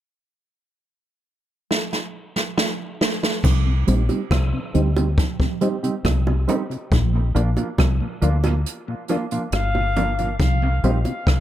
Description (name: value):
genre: dub reggae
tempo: 69 BPM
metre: 4/4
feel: straight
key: C minor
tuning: A4 = 440 Hz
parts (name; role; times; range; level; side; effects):
- jazz brush drum kit; drums; 1.7-11.4 s; crash cymbal, hi-hat, kick drum, rim click, snare drum; -23 LUFS; right 1 dB; none
- deep dub fingered electric bass; bass; 3.4-11.4 s; G1 to D2; -19 LUFS; left 1 dB; none
- mellow tonewheel organ; accompaniment; 3.7-11.1 s; Bb2 to Eb4; -28 LUFS; left 3 dB; slow rotary speaker, low-pass filter
- mellow electric guitar; accompaniment; 3.9-11.0 s; F3 to G4; -27 LUFS; right 4 dB; low-pass filter, dub echo
- bongos; percussion; 4.1-11.3 s; none; -30 LUFS; right 4 dB; dub echo
- breathy bright jazz flute; melody; 9.5-10.4 s; F5; -26 LUFS; left 2 dB; dub echo
room: light reverb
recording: echo-heavy mix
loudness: -19 LUFS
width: side -12 dB against mid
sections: 0.0-3.4 A section; 3.4-10.4 B section; 10.4-11.4 C section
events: drum fill 1.7-3.4; filter sweep 3.4-10.4; break 8.7-10.4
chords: 0.0 N.C.; 3.4 Cm; 6.9 Bb; 10.4 Cm